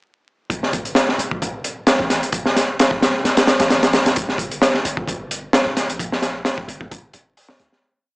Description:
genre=breakbeat, breaks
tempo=131 BPM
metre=4/4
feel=swing 55% on 16ths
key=D minor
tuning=A4 = 441 Hz
part: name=warm 808-style bass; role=bass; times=0.5-7.7 s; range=D1 to D2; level=-35 LUFS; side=equal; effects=none
part: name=crunchy breakbeat drum kit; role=drums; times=0.5-7.8 s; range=hi-hat, kick drum, snare drum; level=-16 LUFS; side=equal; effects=none
room=light reverb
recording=vinyl crackle, small speaker sound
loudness=-16 LUFS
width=side -31 dB against mid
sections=0.5-7.8 drop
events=drop 0.5-7.8; fade-out 5.4-7.8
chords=none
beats=| 0.50 0.96 1.42 1.87 | 2.33 2.79 3.25 3.71 | 4.16 4.62 5.08 5.54 | 6.00 6.45 6.91 7.37

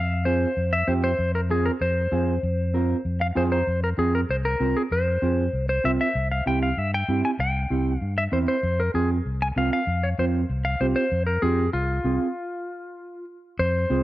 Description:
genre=latin, cumbia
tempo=193 BPM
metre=4/4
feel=straight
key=F harmonic minor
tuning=A4 = 442 Hz
part: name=clean electric guitar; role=melody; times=0.0-14.0 s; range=F4 to Ab5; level=-26 LUFS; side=left 1 dB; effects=spring reverb
part: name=fingered electric bass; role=bass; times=0.0-14.0 s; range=C2 to G2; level=-25 LUFS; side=left 1 dB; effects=none
part: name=mellow electric guitar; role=accompaniment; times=0.3-14.0 s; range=C4 to Bb5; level=-24 LUFS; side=right 3 dB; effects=none
room=light reverb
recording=dry, close 1970s-style studio recording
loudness=-21 LUFS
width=side -16 dB against mid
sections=0.0-3.7 A section; 3.7-13.6 B section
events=clean electric guitar fill 3.1-3.7; stop 12.4-13.6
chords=0.0 Fm; 6.2 C; 8.6 F5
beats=0.26 0.57 0.88 | 1.19 1.50 1.81 2.12 | 2.43 2.74 3.05 3.37 | 3.67 3.98 4.30 4.61 | 4.92 5.23 5.54 5.85 | 6.16 6.47 6.78 7.09 | 7.40 7.71 8.02 8.33 | 8.64 8.95 9.26 9.57 | 9.88 10.19 10.50 10.81 | 11.12 11.43 11.74 12.05 | 12.36 12.67 12.98 13.29 | 13.60 13.90

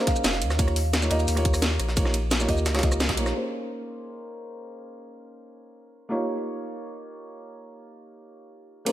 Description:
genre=liquid drum and bass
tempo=174 BPM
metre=4/4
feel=straight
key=unclear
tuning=A4 = 440 Hz
part: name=felt-muted upright piano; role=accompaniment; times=0.0-8.9 s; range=Bb3 to Eb5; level=-30 LUFS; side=equal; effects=low-pass filter, ping-pong delay
part: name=kalimba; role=melody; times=0.1-0.3, 8.9 s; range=Bb4 to F5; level=-34 LUFS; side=right 1 dB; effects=tape echo
part: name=electronic kick drum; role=drums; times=0.1-3.2 s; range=none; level=-25 LUFS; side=equal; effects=studio reverb
part: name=garage drum kit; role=drums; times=0.1-3.3 s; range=hi-hat, rim click, shaker, snare drum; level=-28 LUFS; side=equal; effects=low-pass filter on snare, studio reverb, low-pass filter on perc, low-pass filter on hats
part: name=jungle sampler-style drum kit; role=drums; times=0.1-3.3, 8.9 s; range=hi-hat, ride cymbal, snare drum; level=-31 LUFS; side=right 1 dB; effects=high-pass filter on snare, studio reverb, high-pass filter on cymbals, high-pass filter on hats
part: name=warm sub bass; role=bass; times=0.2-3.3 s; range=F1 to Eb2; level=-26 LUFS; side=equal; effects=none
room=light reverb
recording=none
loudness=-22 LUFS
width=side -13 dB against mid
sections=0.0-3.3 A section; 3.3-8.9 B section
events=drop 0.0-3.3; band accent 3.0; filter sweep on felt piano 3.3-8.9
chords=0.0 Bbm11; 0.6 Eb9; 3.3 Bbm11; 6.1 Eb9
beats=0.24 | 0.59 0.93 1.28 1.62 | 1.97 2.31 2.66 3.00 | 3.35 3.69 4.04 4.38 | 4.73 5.07 5.42 5.76 | 6.11 6.45 6.80 7.14 | 7.49 7.83 8.18 8.52 | 8.87

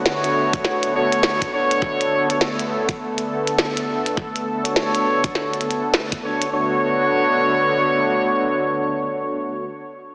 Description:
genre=glitch hop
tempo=102 BPM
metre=4/4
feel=swing 63% on 16ths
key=B minor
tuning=A4 = 440 Hz
part: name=warm analog pad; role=sustained chords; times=0.0-9.6 s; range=D3 to A4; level=-23 LUFS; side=equal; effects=chorus, tremolo, sidechain pumping
part: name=mellow horn section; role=stabs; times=0.0-9.6 s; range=D4 to C#5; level=-20 LUFS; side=equal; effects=vintage 12-bit sampler grit, sidechain pumping, low-pass filter, tape echo
part: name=glitchy drum kit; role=drums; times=0.1-6.5 s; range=hi-hat, snare drum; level=-23 LUFS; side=equal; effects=studio reverb
part: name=electronic kick drum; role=drums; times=0.5-6.2 s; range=none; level=-27 LUFS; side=equal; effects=studio reverb
room=wet lush hall reverb, RT60 2.6 s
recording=heavily compressed radio sound, multiband compression, small speaker sound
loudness=-18 LUFS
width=side -38 dB against mid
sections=0.0-6.5 A section; 6.5-8.9 B section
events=none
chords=0.0 Bm7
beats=0.05 0.64 1.23 | 1.82 2.41 2.99 3.58 | 4.17 4.76 5.35 5.94 | 6.52 7.11 7.70 8.29

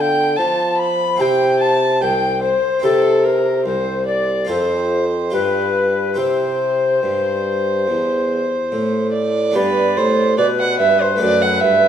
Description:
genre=classical, baroque-style sonata movement with continuo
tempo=72 BPM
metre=4/4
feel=straight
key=C major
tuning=A4 = 440 Hz
part: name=tenor recorder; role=melody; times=0.0-11.9 s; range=A4 to B5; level=-20 LUFS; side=left 6 dB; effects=none
part: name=warm violin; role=second line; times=0.0-11.9 s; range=A4 to B5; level=-20 LUFS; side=right 5 dB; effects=none
part: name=harpsichord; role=accompaniment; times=0.0-11.9 s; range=C2 to B4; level=-23 LUFS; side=left 1 dB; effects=none
part: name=mellow bassoon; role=bass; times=0.0-11.9 s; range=C2 to F3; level=-20 LUFS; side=right 1 dB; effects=none
room=moderate recital hall reverb, RT60 1.5 s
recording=none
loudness=-15 LUFS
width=side -9 dB against mid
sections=0.0-9.6 A section; 9.6-11.9 A section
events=none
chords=0.0 Bdim/D; 1.2 C; 4.5 F; 5.3 G7; 6.2 C; 9.6 G; 11.2 D/F#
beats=0.38 1.20 2.02 | 2.84 3.66 4.49 5.33 | 6.17 7.03 7.88 8.72 | 9.55 10.38 11.20

